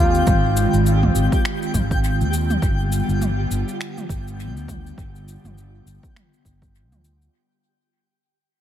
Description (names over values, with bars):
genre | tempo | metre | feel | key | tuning
organic downtempo | 102 BPM | 4/4 | swing 58% on 16ths | G phrygian dominant | A4 = 440 Hz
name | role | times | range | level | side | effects
trumpet with bucket mute | melody | 0.0-0.8 s | F4 | -26 LUFS | equal | tape echo
airy breathy pad | sustained chords | 0.0-7.3 s | D3 to F4 | -26 LUFS | equal | chorus, sidechain pumping
fretless electric bass | bass | 0.0-7.3 s | G1 to Eb2 | -21 LUFS | equal | sidechain pumping
twinkling granular texture | texture | 0.0-7.3 s | G4 to G5 | -30 LUFS | left 1 dB | built-in reverb
deep house drum kit | drums | 0.1-7.3 s | cabasa, finger snaps, toms | -28 LUFS | equal | overdrive, dub echo
electronic kick drum | drums | 0.3-6.7 s | none | -22 LUFS | equal | overdrive
udu | percussion | 1.0-1.9 s | none | -30 LUFS | equal | none
room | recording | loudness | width
light reverb | echo-heavy mix | -17 LUFS | side -10 dB against mid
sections
0.0-7.3 A section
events
fade-out 0.0-7.3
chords
0.0 Ab6; 2.6 G7